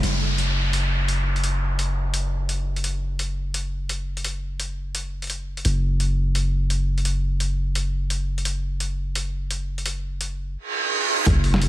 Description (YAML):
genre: half-time drum and bass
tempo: 171 BPM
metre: 4/4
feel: swing 57% on 16ths, half-time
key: unclear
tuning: A4 = 439 Hz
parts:
  - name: long sustained 808-style bass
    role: bass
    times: 0.0-11.7 s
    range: F#1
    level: -24 LUFS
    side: equal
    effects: none
  - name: boom bap sampler-style drum kit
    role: drums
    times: 0.0-11.7 s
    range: hi-hat, snare drum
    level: -27 LUFS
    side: equal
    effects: overdrive
  - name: downlifter, reverse cymbal and sub drop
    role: sound effects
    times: 0.0-2.8, 10.6-11.7 s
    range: none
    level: -25 LUFS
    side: right 2 dB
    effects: none
  - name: electronic kick drum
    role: drums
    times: 11.3 s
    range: none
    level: -20 LUFS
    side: equal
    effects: overdrive
room: light reverb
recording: none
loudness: -22 LUFS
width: side -14 dB against mid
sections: 0.0-11.3 A section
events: reverse cymbal 10.6-11.3; impact 11.3-11.7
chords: none